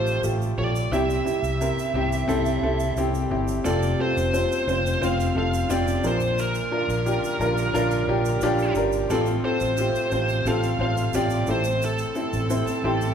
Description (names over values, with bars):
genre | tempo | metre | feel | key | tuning
piano-driven pop | 88 BPM | 4/4 | straight | F major | A4 = 439 Hz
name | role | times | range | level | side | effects
bluesy overdriven lead guitar | melody | 0.0-13.1 s | A4 to F5 | -27 LUFS | right 1 dB | distortion
clear upright piano | accompaniment | 0.0-13.1 s | A2 to C6 | -24 LUFS | equal | none
dark studio string section | sustained chords | 0.0-13.1 s | C3 to F4 | -37 LUFS | equal | none
vintage muted fingered electric bass | bass | 0.0-13.1 s | F1 to C2 | -27 LUFS | equal | none
tube shaker | percussion | 0.1-13.1 s | none | -41 LUFS | right 6 dB | none
room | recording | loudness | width
wet large studio reverb, RT60 1.3 s | band playing live in one room | -21 LUFS | side -8 dB against mid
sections
0.0-3.6 A section; 3.6-13.1 B section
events
upright piano fill 12.5-13.1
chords
0.0 Fadd9/A; 0.9 C; 3.6 F; 6.0 Bb; 9.1 F/A; 11.5 Am